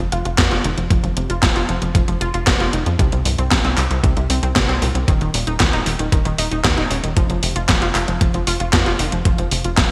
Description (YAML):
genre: italo disco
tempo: 115 BPM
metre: 4/4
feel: straight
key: unclear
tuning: A4 = 439 Hz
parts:
  - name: warbly dusty pluck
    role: arpeggios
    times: 0.0-9.8 s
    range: G2 to F4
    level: -26 LUFS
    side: equal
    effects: chorus, digital delay
  - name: tight sequencer bass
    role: bass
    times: 0.0-9.9 s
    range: Eb1 to F2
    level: -24 LUFS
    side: equal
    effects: none
  - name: gated 80s digital drum machine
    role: drums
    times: 0.1-9.9 s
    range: handclaps, hi-hat, snare drum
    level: -23 LUFS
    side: equal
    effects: gated reverb, gated reverb snare
  - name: electronic kick drum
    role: drums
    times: 0.4-9.9 s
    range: none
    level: -21 LUFS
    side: equal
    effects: overdrive
room: moderate lush hall reverb, RT60 2.4 s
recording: bright 1980s-style digital production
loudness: -18 LUFS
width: mono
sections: 0.0-9.9 A section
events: none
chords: 0.0 F5; 3.0 C5; 5.1 Eb5; 7.2 F5